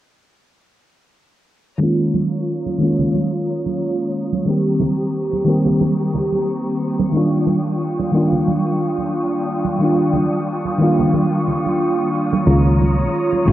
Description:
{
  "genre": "sunset chillout",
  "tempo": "90 BPM",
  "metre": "4/4",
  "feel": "swing 55% on 16ths",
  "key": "unclear",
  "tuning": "A4 = 440 Hz",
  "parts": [
    { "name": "mellow FM electric piano", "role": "accompaniment", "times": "1.8-13.5 s", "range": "Eb3 to G4", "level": "-17 LUFS", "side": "equal", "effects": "chorus, auto-pan, low-pass filter, cassette tape, analog delay" },
    { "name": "rich studio string section", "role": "sustained chords", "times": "1.8-13.5 s", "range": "C4 to Eb6", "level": "-25 LUFS", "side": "equal", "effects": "low-pass filter, cassette tape" },
    { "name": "shaker", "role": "drums", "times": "1.8-13.5 s", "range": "none", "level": "-65 LUFS", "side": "left 4 dB", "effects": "none" },
    { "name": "twinkling granular texture", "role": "texture", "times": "4.6-13.5 s", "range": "Db6", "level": "-34 LUFS", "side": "right 1 dB", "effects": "built-in reverb, cassette tape" },
    { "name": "congas", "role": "percussion", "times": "2.1-13.4 s", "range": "none", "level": "-25 LUFS", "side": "right 6 dB", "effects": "none" },
    { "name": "woody fretless electric bass", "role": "bass", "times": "12.5-13.5 s", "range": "Ab1 to Db2", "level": "-14 LUFS", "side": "equal", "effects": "none" }
  ],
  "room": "moderate booth ambience, RT60 0.2 s",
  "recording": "home recording on cassette, low-pass filter",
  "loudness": "-16 LUFS",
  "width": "side -13 dB against mid",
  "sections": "1.8-13.5 A section",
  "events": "filter sweep on string section 1.8-13.5; filter sweep 1.8-13.5",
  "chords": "1.8 Db69; 4.5 Cm7; 7.1 Ebmaj9; 12.5 Db69"
}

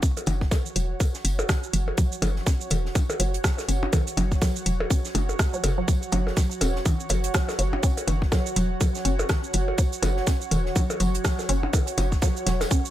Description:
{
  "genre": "minimal techno",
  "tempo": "123 BPM",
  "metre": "4/4",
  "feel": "swing 59% on 16ths",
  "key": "unclear",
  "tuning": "A4 = 440 Hz",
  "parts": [
    { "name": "resonant blip pluck", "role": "riff", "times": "0.0-12.8 s", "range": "C#3 to C#4", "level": "-31 LUFS", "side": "equal", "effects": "phaser, cassette tape, sidechain pumping, ping-pong delay" },
    { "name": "booming analog drum machine", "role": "drums", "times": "0.0-12.9 s", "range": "hi-hat, rim click, shaker", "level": "-30 LUFS", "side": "right 1 dB", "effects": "none" },
    { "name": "compact cocktail drum kit", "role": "drums", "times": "0.0-12.8 s", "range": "hi-hat, snare drum, tambourine", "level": "-39 LUFS", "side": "right 2 dB", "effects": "sidechain pumping on hats, high-pass filter on hats, high-pass filter on snare, sidechain pumping on perc, high-pass filter on perc, high-pass filter on room" },
    { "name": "electronic kick drum", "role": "drums", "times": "0.0-12.8 s", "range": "none", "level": "-22 LUFS", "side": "equal", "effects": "none" },
    { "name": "airy breathy pad", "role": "texture", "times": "0.0-12.9 s", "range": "F#4 to F#5", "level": "-33 LUFS", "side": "right 3 dB", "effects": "chorus, sidechain pumping" },
    { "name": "percussion blips", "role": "percussion", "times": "0.2-12.7 s", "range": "none", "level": "-32 LUFS", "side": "left 1 dB", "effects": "overdrive, ping-pong delay" },
    { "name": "hollow knocking FM bass", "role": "bass", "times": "0.3-12.6 s", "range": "E1 to F#1", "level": "-26 LUFS", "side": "equal", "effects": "sidechain pumping" }
  ],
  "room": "digital ambience",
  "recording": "none",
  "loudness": "-22 LUFS",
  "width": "side -13 dB against mid",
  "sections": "0.0-12.9 A section",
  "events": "fade-in on analog synth pad 0.0-12.9; filter sweep on synth arpeggio sound 0.0-12.9",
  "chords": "0.0 F#7(no3)"
}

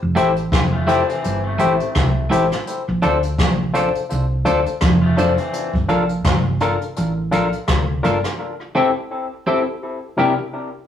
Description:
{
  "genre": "lovers rock reggae",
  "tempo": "84 BPM",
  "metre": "4/4",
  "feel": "swing 56% on 16ths",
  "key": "F major",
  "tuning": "A4 = 439 Hz",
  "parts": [
    { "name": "hollow-body short-scale fingered electric bass", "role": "bass", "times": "0.0-8.2 s", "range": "F1 to F2", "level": "-21 LUFS", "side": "right 1 dB", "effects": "none" },
    { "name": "barky tine electric piano", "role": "accompaniment", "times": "0.2-10.5 s", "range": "C3 to C5", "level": "-20 LUFS", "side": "left 3 dB", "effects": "tape echo" },
    { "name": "twelve-string electric guitar", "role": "stabs", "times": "0.2-10.4 s", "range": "A3 to A4", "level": "-24 LUFS", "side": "right 2 dB", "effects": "none" },
    { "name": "jazz brush drum kit", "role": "drums", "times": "0.2-8.4 s", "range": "hi-hat, kick drum, rim click", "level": "-21 LUFS", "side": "equal", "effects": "tape echo" },
    { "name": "electric guitar through a small old amp", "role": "arpeggios", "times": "0.7-5.7 s", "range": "C3 to F4", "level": "-27 LUFS", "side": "left 3 dB", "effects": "none" }
  ],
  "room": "wet studio reverb, RT60 0.6 s",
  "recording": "rough rehearsal-room recording, tube saturation, small room ambience",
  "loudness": "-16 LUFS",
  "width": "side -9 dB against mid",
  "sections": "0.0-10.9 A section",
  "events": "break 8.4-10.9",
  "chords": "0.0 Fmaj9; 2.7 Bbmaj9; 5.5 Gm9; 8.4 Am7; 9.8 C7"
}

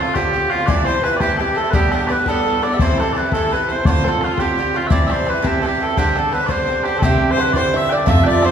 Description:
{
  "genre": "celtic folk, Celtic jig",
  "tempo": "114 BPM (dotted quarters)",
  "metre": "6/8",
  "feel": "straight",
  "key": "C major",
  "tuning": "A4 = 441 Hz",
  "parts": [
    { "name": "mellow small bagpipes", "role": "melody", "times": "0.0-8.5 s", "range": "F4 to G5", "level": "-19 LUFS", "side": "equal", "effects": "none" },
    { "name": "clear fiddle", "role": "second line", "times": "0.0-8.5 s", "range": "F4 to E5", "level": "-25 LUFS", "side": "left 4 dB", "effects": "none" },
    { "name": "Irish bouzouki", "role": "accompaniment", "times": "0.0-8.5 s", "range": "G2 to F4", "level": "-21 LUFS", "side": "right 3 dB", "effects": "none" },
    { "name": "bodhran", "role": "percussion", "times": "0.2-8.5 s", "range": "none", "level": "-21 LUFS", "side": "left 1 dB", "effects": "none" },
    { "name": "bluegrass banjo", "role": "second line", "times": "6.9-8.5 s", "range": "G4 to E5", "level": "-24 LUFS", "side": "right 5 dB", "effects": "none" },
    { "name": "warm double bass", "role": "bass", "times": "7.0-8.5 s", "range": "C2 to F2", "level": "-20 LUFS", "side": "equal", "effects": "none" }
  ],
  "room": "wet recital hall reverb, RT60 1.7 s",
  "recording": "recorded in a church or concert hall",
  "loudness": "-15 LUFS",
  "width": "side -8 dB against mid",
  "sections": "0.0-7.0 A section; 7.0-8.5 B section",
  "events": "none",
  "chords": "0.0 Dm7; 0.7 C; 1.7 Gadd9; 2.8 C; 3.9 Dm7; 4.9 C; 6.0 Csus2; 7.0 Cadd9"
}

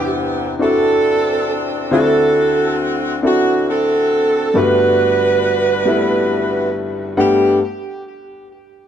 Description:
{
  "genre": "gospel",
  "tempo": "46 BPM (dotted quarters)",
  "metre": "6/8",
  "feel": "straight",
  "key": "G major",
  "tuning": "A4 = 440 Hz",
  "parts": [
    { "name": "bright saxophone section", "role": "melody", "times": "0.0-7.6 s", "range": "B3 to B4", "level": "-16 LUFS", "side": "right 2 dB", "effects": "tape echo" },
    { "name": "clear upright piano", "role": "accompaniment", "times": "0.0-7.6 s", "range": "G1 to F#5", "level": "-18 LUFS", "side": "left 3 dB", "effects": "none" }
  ],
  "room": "light reverb",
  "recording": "none",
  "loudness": "-13 LUFS",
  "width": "side -9 dB against mid",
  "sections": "0.0-7.2 A section; 7.2-8.9 B section",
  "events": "none",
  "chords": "0.0 Cmaj9/E; 1.9 D9; 4.5 Gmaj9"
}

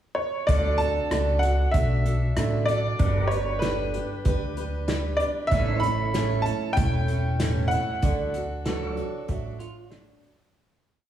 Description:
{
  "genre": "honky-tonk and classic country",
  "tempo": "95 BPM",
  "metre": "4/4",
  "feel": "straight",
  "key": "D major",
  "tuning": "A4 = 440 Hz",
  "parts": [
    { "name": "bright upright piano", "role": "melody", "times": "0.1-9.9 s", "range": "B4 to B5", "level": "-28 LUFS", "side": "equal", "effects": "none" },
    { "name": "dark concert grand piano", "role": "accompaniment", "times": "0.5-10.3 s", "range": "D4 to E5", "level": "-35 LUFS", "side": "right 5 dB", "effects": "none" },
    { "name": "picked steel-string acoustic guitar", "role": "accompaniment", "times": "0.5-10.6 s", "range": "A2 to B4", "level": "-32 LUFS", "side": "left 2 dB", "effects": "none" },
    { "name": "pedal steel guitar", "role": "sustained chords", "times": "0.5-10.5 s", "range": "F#3 to D5", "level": "-33 LUFS", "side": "right 2 dB", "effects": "none" },
    { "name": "upright bass", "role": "bass", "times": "0.5-10.3 s", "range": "E1 to D2", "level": "-27 LUFS", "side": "right 1 dB", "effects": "none" },
    { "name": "unplugged drum kit", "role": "drums", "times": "0.5-10.4 s", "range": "hi-hat, kick drum, rim click, snare drum", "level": "-28 LUFS", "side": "equal", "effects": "none" },
    { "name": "electric guitar through a small old amp", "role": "second line", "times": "8.7-10.2 s", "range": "D4 to A4", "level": "-38 LUFS", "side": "right 7 dB", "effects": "none" }
  ],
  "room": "wet recital hall reverb, RT60 1.6 s",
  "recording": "heard from further back in the room",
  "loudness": "-22 LUFS",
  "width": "side -11 dB against mid",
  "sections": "0.0-0.5 pickup bar; 0.5-10.6 A section",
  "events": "fade-out 8.0-10.6",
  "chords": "0.5 D; 3.0 G; 5.5 A; 8.0 D"
}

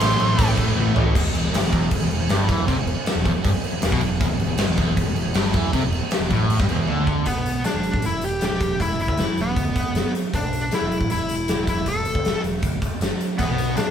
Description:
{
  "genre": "hard rock",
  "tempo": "157 BPM",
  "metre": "4/4",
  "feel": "straight",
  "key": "E minor",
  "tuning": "A4 = 440 Hz",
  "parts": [
    { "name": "smooth overdriven lead guitar", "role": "melody", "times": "0.0-0.5, 7.3-13.9 s", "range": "B3 to C6", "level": "-25 LUFS", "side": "equal", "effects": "none" },
    { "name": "overdriven semi-hollow guitar", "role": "riff", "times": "0.0-7.3, 13.4-13.9 s", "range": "E2 to A3", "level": "-28 LUFS", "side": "right 4 dB", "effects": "phaser" },
    { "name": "sludgy distorted guitar", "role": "riff", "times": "0.0-7.3, 13.4-13.9 s", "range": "E2 to A3", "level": "-25 LUFS", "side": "left 4 dB", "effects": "overdrive" },
    { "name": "growling picked electric bass", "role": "bass", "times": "0.0-13.9 s", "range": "E1 to E2", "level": "-26 LUFS", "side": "equal", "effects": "overdrive" },
    { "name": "big rock drum kit", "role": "drums", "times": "0.0-13.9 s", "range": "crash cymbal, hi-hat, kick drum, snare drum, toms", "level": "-22 LUFS", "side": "equal", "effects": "none" }
  ],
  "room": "moderate stone room reverb, RT60 1.3 s",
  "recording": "band playing live in one room",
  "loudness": "-19 LUFS",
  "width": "side -8 dB against mid",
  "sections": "0.0-1.1 A section; 1.1-7.3 B section; 7.3-13.9 C section",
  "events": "lead electric guitar solo 0.0-1.1; drum fill 0.8-1.1, 6.9-7.3",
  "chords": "0.0 Am; 1.1 Em; 7.3 E5"
}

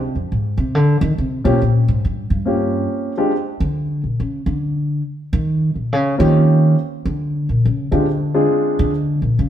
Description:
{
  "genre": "jazz",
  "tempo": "139 BPM",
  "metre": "4/4",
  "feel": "swing 65% on 8ths",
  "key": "Bb mixolydian",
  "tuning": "A4 = 440 Hz",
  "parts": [
    { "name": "upright bass", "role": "bass", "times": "0.0-9.5 s", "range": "F2 to Eb3", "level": "-17 LUFS", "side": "equal", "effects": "none" },
    { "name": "warm grand piano", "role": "melody", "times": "1.4-3.3, 6.2-8.9 s", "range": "Ab3 to Ab4", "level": "-19 LUFS", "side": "equal", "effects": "none" }
  ],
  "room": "wet stone room reverb, RT60 1.3 s",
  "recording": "band playing live in one room",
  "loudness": "-16 LUFS",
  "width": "side -10 dB against mid",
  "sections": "0.0-9.5 A section",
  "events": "upright bass solo 0.0-9.5",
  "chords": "0.0 Bb9 (rootless); 1.6 Bbm69/G; 3.3 N.C.; 5.0 Eb13; 6.8 Bb9 (rootless)"
}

